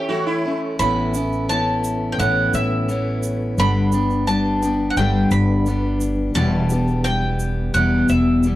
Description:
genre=acoustic folk duo or small band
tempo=86 BPM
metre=4/4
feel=straight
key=A mixolydian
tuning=A4 = 440 Hz
part: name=sitar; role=second line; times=0.0-0.6 s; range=E4 to G4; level=-26 LUFS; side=right 2 dB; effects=none
part: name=picked steel-string acoustic guitar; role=accompaniment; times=0.0-8.6 s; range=E2 to G4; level=-21 LUFS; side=left 2 dB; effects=none
part: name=mellow tonewheel organ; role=sustained chords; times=0.0-8.6 s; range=E3 to C#6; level=-28 LUFS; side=right 1 dB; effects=slow rotary speaker
part: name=bowl-back mandolin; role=melody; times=0.8-8.6 s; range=E5 to B5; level=-23 LUFS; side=right 2 dB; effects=none
part: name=upright bass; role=bass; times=0.8-8.6 s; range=E1 to A1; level=-22 LUFS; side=equal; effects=none
part: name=egg shaker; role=percussion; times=0.8-8.6 s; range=none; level=-37 LUFS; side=right 6 dB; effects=none
room=small room ambience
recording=dry, close 1970s-style studio recording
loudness=-17 LUFS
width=side -15 dB against mid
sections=0.8-8.6 A section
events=break 0.0-0.8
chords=0.0 A; 0.8 Aadd9; 3.6 G; 6.4 Em

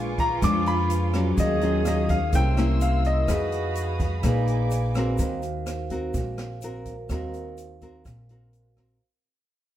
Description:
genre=bossa nova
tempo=126 BPM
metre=4/4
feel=straight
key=Eb dorian from 5.2 s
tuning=A4 = 440 Hz
part: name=warm baby grand piano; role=melody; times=0.0-4.2 s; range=Eb5 to D6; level=-28 LUFS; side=left 2 dB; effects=none
part: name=dark cello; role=second line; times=0.0-4.9 s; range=Eb4 to Ab4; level=-32 LUFS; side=right 6 dB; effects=none
part: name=nylon-string guitar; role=accompaniment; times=0.0-9.0 s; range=Bb2 to Cb5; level=-29 LUFS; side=left 3 dB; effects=none
part: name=vibraphone with medium mallets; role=accompaniment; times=0.0-9.0 s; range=Gb4 to Ab5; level=-35 LUFS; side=right 4 dB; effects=none
part: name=muted studio string section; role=sustained chords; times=0.0-5.2 s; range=Ab4 to E6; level=-38 LUFS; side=right 1 dB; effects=none
part: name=upright bass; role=bass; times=0.0-9.0 s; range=Bb1 to F2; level=-26 LUFS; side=equal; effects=none
part: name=open jazz drum kit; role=drums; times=0.2-8.9 s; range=hi-hat, kick drum, rim click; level=-30 LUFS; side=equal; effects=none
part: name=egg shaker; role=percussion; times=0.2-9.0 s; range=none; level=-47 LUFS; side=left 6 dB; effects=none
room=moderate echo chamber reverb, RT60 1.2 s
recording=heard from further back in the room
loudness=-22 LUFS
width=side -12 dB against mid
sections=0.0-5.2 A section; 5.2-9.0 B section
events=fade-out 5.2-9.0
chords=0.0 Bb7b9; 1.4 Ebm9; 2.3 C7b9; 3.3 Fm7b5; 4.2 Bb7b9; 5.2 Ebm6

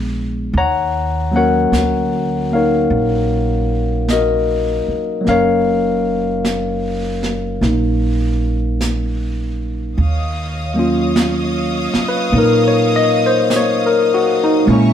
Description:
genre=jazz ballad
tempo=51 BPM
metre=4/4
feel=swing 67% on 8ths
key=Eb minor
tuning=A4 = 440 Hz
part: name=barky tine electric piano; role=accompaniment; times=0.0-14.9 s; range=F3 to Bb5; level=-15 LUFS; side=left 2 dB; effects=none
part: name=upright bass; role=bass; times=0.0-14.9 s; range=Gb1 to Bb2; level=-20 LUFS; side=right 1 dB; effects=none
part: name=jazz brush drum kit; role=drums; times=0.6-14.9 s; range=brushed snare drum, hi-hat, snare drum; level=-24 LUFS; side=right 2 dB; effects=none
part: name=clear studio string section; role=sustained chords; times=10.0-14.9 s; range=Db5 to Eb6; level=-22 LUFS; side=equal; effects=none
room=moderate studio reverb, RT60 0.8 s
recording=heard from further back in the room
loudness=-14 LUFS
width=side -9 dB against mid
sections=0.0-10.0 A section; 10.0-14.9 B section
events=none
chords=0.0 Bb7b9; 0.5 Ebm9

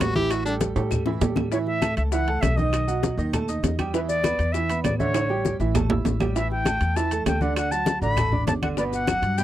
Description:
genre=latin, salsa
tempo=198 BPM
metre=4/4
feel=straight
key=unclear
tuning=A4 = 439 Hz
part: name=bright tenor saxophone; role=melody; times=0.0-0.5 s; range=D4 to G4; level=-25 LUFS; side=left 1 dB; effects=none
part: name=bright baby grand piano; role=accompaniment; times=0.0-9.4 s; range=B2 to E6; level=-28 LUFS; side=right 5 dB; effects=none
part: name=upright bass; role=bass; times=0.0-9.4 s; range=G1 to A2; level=-26 LUFS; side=equal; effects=none
part: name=bongos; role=percussion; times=0.0-9.4 s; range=none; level=-32 LUFS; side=left 10 dB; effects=none
part: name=claves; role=percussion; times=0.0-9.2 s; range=none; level=-39 LUFS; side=right 5 dB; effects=none
part: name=congas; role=percussion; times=0.0-9.4 s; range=none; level=-29 LUFS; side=left 2 dB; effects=none
part: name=maracas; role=percussion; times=0.0-9.4 s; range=none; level=-40 LUFS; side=left 20 dB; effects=none
part: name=timbales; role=percussion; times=0.0-9.4 s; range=none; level=-29 LUFS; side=right 6 dB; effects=none
part: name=concert flute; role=melody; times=1.5-9.4 s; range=B4 to B5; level=-26 LUFS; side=left 1 dB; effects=none
room=little or no reverb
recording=dry, close 1970s-style studio recording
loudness=-21 LUFS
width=side -12 dB against mid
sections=0.0-1.5 A section; 1.5-9.4 B section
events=tenor saxophone solo 0.0-1.5; drum fill 0.6-1.5, 5.1-6.4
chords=0.3 A5; 1.5 A; 2.7 B7; 3.9 E5; 5.1 A7sus4; 7.6 D6; 8.8 Gmaj7

